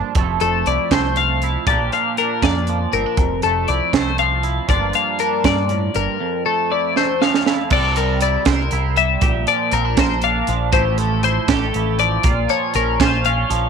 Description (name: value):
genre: math rock and midwest emo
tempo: 79 BPM (dotted quarters)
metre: 6/8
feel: straight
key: F major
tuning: A4 = 438 Hz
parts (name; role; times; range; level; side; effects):
- twangy electric guitar; accompaniment; 0.0-13.7 s; F2 to C5; -22 LUFS; right 13 dB; analog chorus
- crisp fusion drum kit; drums; 0.1-13.6 s; crash cymbal, hi-hat, kick drum, snare drum; -20 LUFS; right 4 dB; none
- deep dub picked electric bass; bass; 0.2-13.7 s; F1 to G2; -22 LUFS; equal; none
- twelve-string electric guitar; arpeggios; 0.4-13.7 s; A4 to F5; -19 LUFS; left 14 dB; wide subtle chorus
room: light reverb, small room ambience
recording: 1960s-style stereo with parts hard left and right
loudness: -15 LUFS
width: side -6 dB against mid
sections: 0.0-7.7 A section; 7.7-13.7 B section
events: drum fill 7.0-7.7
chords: 0.2 Fmaj7; 1.7 Bb6; 3.2 Fmaj7; 4.7 Gm9; 6.2 Fmaj7; 7.7 C13; 9.2 Bb69; 10.7 Fmaj9/A; 12.2 Bbmadd9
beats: | 0.15 0.91 | 1.66 2.42 | 3.18 3.93 | 4.69 5.45 | 6.20 6.96 | 7.72 8.47 | 9.23 9.98 | 10.74 11.49 | 12.25 13.00